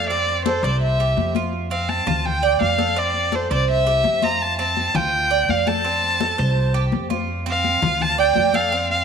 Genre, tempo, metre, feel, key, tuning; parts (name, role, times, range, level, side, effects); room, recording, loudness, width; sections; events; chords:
latin, Cuban son and guajira; 167 BPM; 4/4; straight; F major; A4 = 439 Hz
rich violin; melody; 0.0-9.0 s; C5 to Bb5; -20 LUFS; left 1 dB
Cuban tres; arpeggios; 0.0-9.0 s; C4 to D5; -24 LUFS; right 10 dB
upright bass; bass; 0.0-9.0 s; C2 to F2; -24 LUFS; equal
congas; percussion; 0.1-9.0 s; -28 LUFS; left 9 dB
moderate echo chamber reverb, RT60 2.2 s; 1960s-style stereo with parts hard left and right; -17 LUFS; side -6 dB against mid
0.0-9.0 A section
0.1 F; 0.8 C; 1.5 F; 2.3 Dm; 3.0 F; 3.7 C; 4.4 F; 5.1 Dm; 5.8 F; 6.6 C5; 7.3 F5; 8.0 Dm